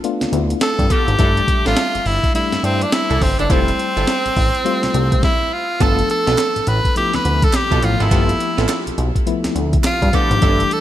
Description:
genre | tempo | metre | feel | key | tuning
R&B, new jack swing | 104 BPM | 4/4 | swing 62% on 16ths | unclear | A4 = 440 Hz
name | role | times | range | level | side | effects
FM electric piano with auto-pan | accompaniment | 0.0-10.8 s | E3 to E5 | -24 LUFS | left 5 dB | none
breakbeat sampler-style drum kit | drums | 0.0-10.8 s | hi-hat, kick drum, snare drum | -19 LUFS | equal | gated reverb
fat analog bass | bass | 0.2-10.6 s | F1 to G2 | -19 LUFS | equal | none
edgy tenor saxophone | melody | 0.6-10.8 s | C4 to B4 | -19 LUFS | equal | digital delay
funky polysynth comp | stabs | 0.9-10.6 s | B3 to A4 | -25 LUFS | right 4 dB | chorus
group handclap | percussion | 6.4-10.0 s | none | -31 LUFS | right 6 dB | none
room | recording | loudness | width
light reverb, digital ambience | bright 1980s-style digital production, faint mains hum | -14 LUFS | side -12 dB against mid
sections
0.0-5.8 A section; 5.8-10.8 B section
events
none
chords
0.0 G9; 1.2 C69/G (rootless); 3.5 Fmaj7; 5.8 G9

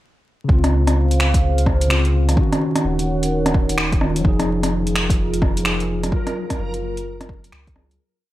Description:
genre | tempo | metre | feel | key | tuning
future garage | 128 BPM | 4/4 | swing 63% on 16ths | unclear | A4 = 442 Hz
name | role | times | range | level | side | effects
mellow tine electric piano | accompaniment | 0.4-8.0 s | Db3 to Bb4 | -23 LUFS | equal | medium stereo tremolo, sidechain pumping, tape echo
dark analog pad | sustained chords | 0.8-8.0 s | Gb3 to Gb5 | -27 LUFS | right 1 dB | chorus, phaser, vintage 12-bit sampler grit, sidechain pumping
soft dub sub bass | bass | 0.5-8.0 s | Eb1 to Db2 | -21 LUFS | equal | tube saturation
electronic kick drum | drums | 0.5-7.7 s | none | -19 LUFS | equal | overdrive
deep house drum kit | drums | 0.6-8.0 s | finger snaps, hi-hat, rim click | -23 LUFS | equal | overdrive
backwards swelling texture | texture | 5.0-8.0 s | Bb4 | -38 LUFS | right 3 dB | built-in reverb
room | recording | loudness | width
light reverb | vinyl crackle | -16 LUFS | side -15 dB against mid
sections
0.5-8.0 groove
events
fade-out 5.5-8.0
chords
0.5 Dbmaj7; 2.4 Ebm7; 4.2 Fm7; 6.1 Gbmaj7

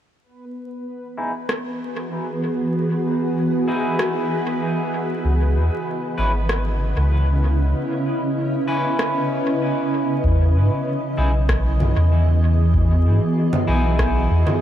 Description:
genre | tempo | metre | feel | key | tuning
ambient dub | 96 BPM | 4/4 | straight | unclear | A4 = 441 Hz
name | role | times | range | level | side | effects
granular cloud pad | sustained chords | 1.7-14.6 s | C#3 to D#5 | -22 LUFS | equal | built-in reverb
bubbling stepped-filter texture | texture | 0.2-10.3 s | B3 to B4 | -32 LUFS | equal | chorus, built-in reverb
electric guitar at the edge of break-up | stabs | 1.2-14.6 s | C#4 to B4 | -28 LUFS | left 1 dB | lush chorus, low-pass filter, dub echo
electronic rim click and congas | drums | 1.5-14.6 s | none | -28 LUFS | equal | overdrive, dub echo
soft dub sub bass | bass | 5.2-14.4 s | G#1 to G#2 | -17 LUFS | equal | none
electronic kick drum | drums | 10.2-14.1 s | none | -23 LUFS | equal | none
room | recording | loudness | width
moderate huge ambient reverb, RT60 7.3 s | dreamy mix soaked in reverb, vinyl crackle | -18 LUFS | side -11 dB against mid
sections
0.2-10.2 A section; 10.2-14.6 B section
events
filter sweep on ambient pad 0.2-10.2; filter sweep on clean electric guitar 0.2-10.2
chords
0.2 Emaj7; 5.2 C#m7; 10.2 Emaj7

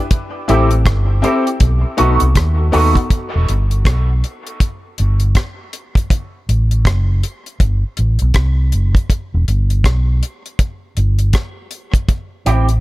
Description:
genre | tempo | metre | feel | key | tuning
dub reggae | 80 BPM | 4/4 | swing 60% on 16ths | E minor | A4 = 441 Hz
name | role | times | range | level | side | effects
deep reggae drum kit | drums | 0.1-12.8 s | hi-hat, kick drum, rim click | -16 LUFS | equal | none
electric guitar with an envelope filter | accompaniment | 0.5-2.9, 12.5-12.7 s | A3 to G4 | -20 LUFS | right 4 dB | ensemble chorus, dub echo
bright concert grand piano | stabs | 0.5-3.0 s | B3 to A4 | -21 LUFS | left 4 dB | dub echo
vintage muted fingered electric bass | bass | 0.5-12.8 s | E1 to D#2 | -14 LUFS | equal | none
room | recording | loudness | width
studio ambience | none | -13 LUFS | side -18 dB against mid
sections
0.0-3.1 A section; 3.1-12.8 B section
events
break 3.1-12.1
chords
0.1 Am7; 1.6 B7; 3.1 Em (rootless); 6.1 Am7; 9.1 Em (rootless); 12.1 Am7

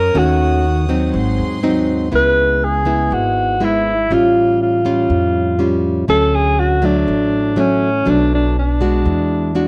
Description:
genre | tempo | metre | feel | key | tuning
bossa nova | 121 BPM | 4/4 | straight | unclear | A4 = 438 Hz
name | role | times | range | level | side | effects
breathy alto saxophone | melody | 0.0-9.7 s | C#4 to B4 | -18 LUFS | equal | slapback echo
nylon-string guitar | accompaniment | 0.0-9.7 s | F#2 to F#4 | -20 LUFS | equal | none
warm studio violin section | sustained chords | 0.0-2.1 s | G#4 to D#6 | -32 LUFS | equal | none
upright bass | bass | 0.0-9.7 s | G#1 to F#2 | -23 LUFS | equal | none
room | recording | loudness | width
small room ambience | dry, close 1970s-style studio recording | -16 LUFS | mono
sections
0.0-2.1 A section; 2.1-9.7 B section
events
alto saxophone solo 0.0-2.1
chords
0.1 D#m7b5; 1.1 G#7; 2.1 C#m7; 4.1 Aaug7; 6.1 Dmaj7; 8.1 Bm7; 9.1 E9

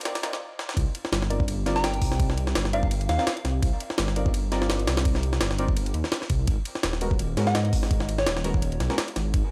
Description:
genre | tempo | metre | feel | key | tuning
drum and bass, jungle | 168 BPM | 4/4 | swing 55% on 16ths | C minor | A4 = 440 Hz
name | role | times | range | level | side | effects
dark detuned saw bass | bass | 0.0-9.4 s | Eb1 to Ab2 | -29 LUFS | equal | high-pass filter
jungle sampler-style drum kit | drums | 0.0-9.4 s | hi-hat, kick drum, ride cymbal, snare drum | -29 LUFS | equal | small room ambience
deep mellow chord stab | stabs | 0.1-9.0 s | Ab3 to D5 | -36 LUFS | equal | chorus, dub echo
soft synth bell | melody | 1.8-3.2, 7.5-8.5 s | Db5 to Bb5 | -34 LUFS | equal | chorus, phaser, dub echo
room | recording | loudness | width
little or no reverb | dry, gritty hardware recording, high-pass filter | -26 LUFS | mono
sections
0.8-9.5 A section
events
drum fill 0.0-0.4, 0.6; break 0.4-0.8; drop 0.8-9.5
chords
0.0 Cm11; 6.5 Abm11

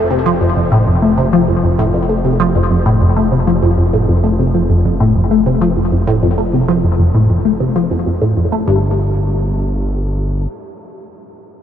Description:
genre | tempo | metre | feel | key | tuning
ambient, sequencer-driven space music | 98 BPM | 4/4 | straight | unclear | A4 = 440 Hz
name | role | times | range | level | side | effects
resonant blip pluck | riff | 0.0-9.0 s | F2 to A3 | -13 LUFS | left 1 dB | phaser, lush chorus, ping-pong delay
fat analog bass | bass | 0.0-10.5 s | F1 to G1 | -18 LUFS | equal | none
room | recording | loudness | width
moderate huge ambient reverb, RT60 9.0 s | dreamy mix soaked in reverb | -12 LUFS | side -10 dB against mid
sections
0.0-8.7 A section; 8.7-11.1 B section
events
filter sweep on synth arpeggio sound 0.0-8.7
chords
0.0 F; 8.7 N.C.

